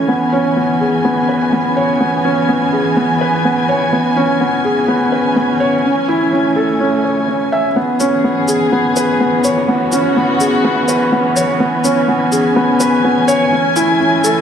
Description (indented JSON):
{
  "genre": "piano and strings electronica",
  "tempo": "125 BPM",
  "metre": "4/4",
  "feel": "straight",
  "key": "C# minor",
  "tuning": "A4 = 440 Hz",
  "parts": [
    { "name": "dark chamber string section", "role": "sustained chords", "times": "0.0-14.4 s", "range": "E3 to G#5", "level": "-17 LUFS", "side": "right 1 dB", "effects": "none" },
    { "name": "felt-muted upright piano", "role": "riff", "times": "0.0-14.4 s", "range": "B3 to E5", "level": "-14 LUFS", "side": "left 1 dB", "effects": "low-pass filter, digital delay" },
    { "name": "shaker", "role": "drums", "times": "8.0-14.3 s", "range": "none", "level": "-23 LUFS", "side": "left 1 dB", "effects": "studio reverb" }
  ],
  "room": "wet scoring stage reverb, RT60 1.9 s, small room ambience",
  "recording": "none",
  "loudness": "-12 LUFS",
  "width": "side -8 dB against mid",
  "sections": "0.0-7.8 A section; 7.8-14.4 B section",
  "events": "filter sweep on felt piano 0.0-7.8; build-up 7.8-14.4",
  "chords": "0.1 E6; 5.8 Amaj7; 7.8 C#m7; 11.6 E6; 13.5 Amaj7",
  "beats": "| 0.08 0.56 1.04 1.52 | 2.00 2.48 2.96 3.44 | 3.92 4.40 4.88 5.36 | 5.84 6.32 6.80 7.28 | 7.76 8.24 8.72 9.20 | 9.68 10.16 10.64 11.12 | 11.60 12.08 12.56 13.04 | 13.52 14.00"
}